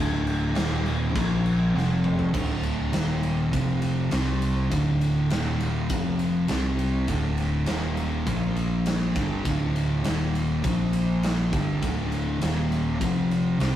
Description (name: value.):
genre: stoner and doom metal.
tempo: 101 BPM.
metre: 4/4.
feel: straight.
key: unclear.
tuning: A4 = 440 Hz.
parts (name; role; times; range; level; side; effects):
thick fuzz guitar; riff; 0.0-13.8 s; D2 to C4; -27 LUFS; left 3 dB; distortion.
thick fuzz guitar; riff; 0.0-13.8 s; D2 to C4; -27 LUFS; right 3 dB; distortion.
growling picked electric bass; bass; 0.0-13.8 s; D1 to C2; -31 LUFS; equal; overdrive.
big rock drum kit; drums; 0.3-13.7 s; crash cymbal, kick drum, ride cymbal, snare drum, toms; -30 LUFS; equal; none.
room: light reverb.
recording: rough rehearsal-room recording, warm saturation.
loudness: -22 LUFS.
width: side -11 dB against mid.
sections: 0.0-2.3 A section; 2.3-13.8 B section.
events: drum fill 1.8-2.3.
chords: 0.0 D5; 0.6 Eb5; 1.2 Bb5; 1.8 F5; 2.3 D5; 2.9 Eb5; 3.5 F5; 4.1 C5; 4.7 D5; 5.3 Eb5; 5.9 F5; 6.5 C5; 7.1 D5; 7.7 Eb5; 8.3 Bb5; 9.2 D5; 10.1 Eb5; 10.6 Bb5; 11.5 D5; 12.4 Eb5; 13.0 F5.